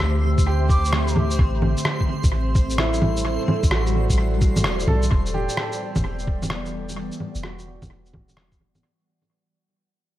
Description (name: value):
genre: future garage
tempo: 129 BPM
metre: 4/4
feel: swing 66% on 16ths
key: E minor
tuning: A4 = 440 Hz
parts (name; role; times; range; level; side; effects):
- ethereal airy pad; sustained chords; 0.0-8.8 s; A2 to F#5; -28 LUFS; equal; ensemble chorus, built-in reverb, phaser, sidechain pumping
- soft 808-style bass; bass; 0.0-8.8 s; E1 to D2; -23 LUFS; equal; tube saturation
- electronic rim click, shaker and bongos; drums; 0.0-8.8 s; none; -26 LUFS; equal; analog delay
- backwards swelling texture; texture; 0.0-5.1 s; C4 to C6; -34 LUFS; right 1 dB; built-in reverb
- electronic kick drum; drums; 0.4-8.6 s; none; -20 LUFS; equal; none
- bright upright piano; accompaniment; 0.5-8.8 s; E4 to A4; -30 LUFS; right 3 dB; sidechain pumping, low-pass filter, dub echo
- breathy hollow jazz flute; melody; 0.7-1.2 s; D6; -31 LUFS; right 1 dB; analog delay
room: light reverb, digital ambience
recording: echo-heavy mix, vinyl crackle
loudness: -19 LUFS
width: side -14 dB against mid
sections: 0.0-5.1 A section; 5.1-8.8 B section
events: fade-out 5.1-8.8; filter sweep on upright piano 5.1-8.8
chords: 0.0 D7sus4; 1.4 Am11; 5.1 Em7